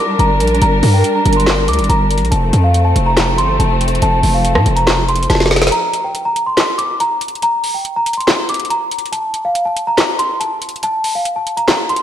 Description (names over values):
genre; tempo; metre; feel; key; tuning
hip hop, trap; 141 BPM; 4/4; half-time; unclear; A4 = 441 Hz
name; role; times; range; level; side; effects
celesta; melody; 0.0-12.0 s; F5 to D6; -17 LUFS; equal; ping-pong delay
dark symphonic string section; sustained chords; 0.0-5.7 s; F3 to Bb4; -18 LUFS; equal; none
hard-hitting 808-style bass; bass; 0.2-5.7 s; F1 to A2; -14 LUFS; equal; none
trap drum kit; drums; 0.2-12.0 s; handclaps, hi-hat, rim click, snare drum; -17 LUFS; equal; vintage 12-bit sampler grit
room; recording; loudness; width
moderate lush hall reverb, RT60 1.7 s; dreamy mix soaked in reverb, vinyl crackle; -12 LUFS; side -10 dB against mid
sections
0.0-5.7 A section; 5.7-12.0 B section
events
drum fill 5.3-5.7; break 5.7-12.0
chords
0.0 Gm; 2.3 F; 5.7 N.C.